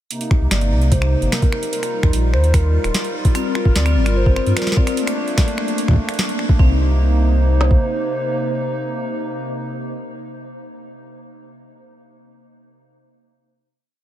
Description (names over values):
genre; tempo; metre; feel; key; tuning
IDM; 148 BPM; 4/4; straight; C dorian; A4 = 441 Hz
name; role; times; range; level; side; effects
hollow soft pad; sustained chords; 0.1-9.9 s; C3 to Bb4; -24 LUFS; right 1 dB; chorus
booming analog drum machine; drums; 0.1-6.5 s; finger snaps, hi-hat, snare drum; -25 LUFS; equal; none
organic electronic drum kit; drums; 0.3-7.8 s; kick drum, snare drum; -15 LUFS; equal; none
warm sub bass; bass; 0.4-7.8 s; Eb1 to G2; -16 LUFS; equal; none
warbly nostalgic lead; melody; 0.5-9.9 s; Bb4 to D5; -27 LUFS; equal; chorus, diffuse ambient delay
vibraphone with hard mallets; arpeggios; 3.4-6.8 s; C4 to F4; -27 LUFS; left 6 dB; vintage 12-bit sampler grit, analog delay
room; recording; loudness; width
light reverb, digital ambience; none; -15 LUFS; side -12 dB against mid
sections
0.1-6.6 groove; 6.6-9.8 final chord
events
none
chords
0.1 Cm7; 1.7 Ebadd9; 3.4 Gm7; 5.0 Bbmaj7; 6.6 Cm7